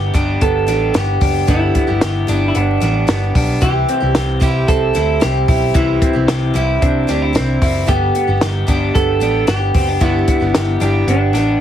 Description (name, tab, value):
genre	jangly indie pop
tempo	112 BPM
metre	4/4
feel	straight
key	G major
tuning	A4 = 439 Hz
part	electric guitar through a small old amp	melody	0.0-11.6 s	D4 to A4	-19 LUFS	equal	none
part	picked steel-string acoustic guitar	accompaniment	0.0-11.6 s	G2 to G4	-23 LUFS	right 6 dB	none
part	electric guitar through a small old amp	arpeggios	0.0-11.6 s	E3 to G4	-20 LUFS	left 2 dB	none
part	vintage muted picked electric bass	bass	0.0-11.6 s	F#1 to D2	-18 LUFS	equal	none
part	compact cocktail drum kit	drums	0.1-11.5 s	hi-hat, kick drum, snare drum	-18 LUFS	equal	none
room	little or no reverb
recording	heavily compressed radio sound, vinyl crackle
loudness	-13 LUFS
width	side -10 dB against mid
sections	0.0-11.6 A section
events	none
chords	0.0 G; 3.6 C; 7.9 G